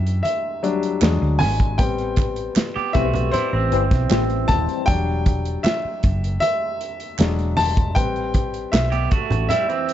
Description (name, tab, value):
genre	lush 1970s-style soul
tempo	78 BPM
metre	4/4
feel	straight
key	E minor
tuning	A4 = 441 Hz
part	warm baby grand piano	accompaniment	0.0-9.9 s	E3 to A5	-23 LUFS	left 3 dB	none
part	hollow-body short-scale fingered electric bass	bass	0.0-9.5 s	D#1 to F#2	-22 LUFS	equal	none
part	warm soul drum kit	drums	0.1-9.9 s	hi-hat, kick drum, snare drum	-21 LUFS	equal	none
part	congas	percussion	0.2-9.7 s	none	-27 LUFS	right 2 dB	none
part	group handclap	percussion	1.0-8.9 s	none	-33 LUFS	right 14 dB	none
part	electric guitar through a small old amp	riff	2.8-9.9 s	E3 to G4	-24 LUFS	right 9 dB	none
part	warm trombone section	stabs	2.9-4.8 s	E3 to C4	-25 LUFS	left 14 dB	none
room	studio reverb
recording	nothing above 7.7 kHz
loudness	-18 LUFS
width	side -11 dB against mid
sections	0.0-9.9 A section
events	grand piano solo 0.0-9.9; band accent 1.8-4.9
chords	0.0 Em9; 1.0 E7; 1.8 Am9; 4.9 Em9; 7.2 E7; 8.0 Am9